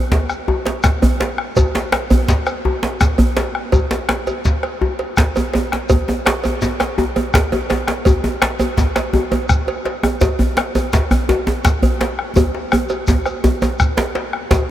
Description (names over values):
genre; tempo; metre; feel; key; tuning
west african traditional, West African drum ensemble; 111 BPM (dotted quarters); 12/8; straight; none; none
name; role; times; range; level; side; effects
bombo; percussion; 0.1-14.7 s; none; -20 LUFS; left 1 dB; none
djembe; percussion; 0.1-14.7 s; none; -23 LUFS; left 3 dB; none
djembe; percussion; 0.1-14.7 s; none; -19 LUFS; right 1 dB; none
shekere; percussion; 0.3-14.7 s; none; -24 LUFS; left 1 dB; none
cowbell; percussion; 0.7-14.7 s; none; -25 LUFS; right 6 dB; none
room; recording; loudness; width
moderate huge ambient reverb, RT60 8.5 s; dreamy mix soaked in reverb; -15 LUFS; side -12 dB against mid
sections
0.0-14.5 A section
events
drum fill 12.4-14.5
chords
none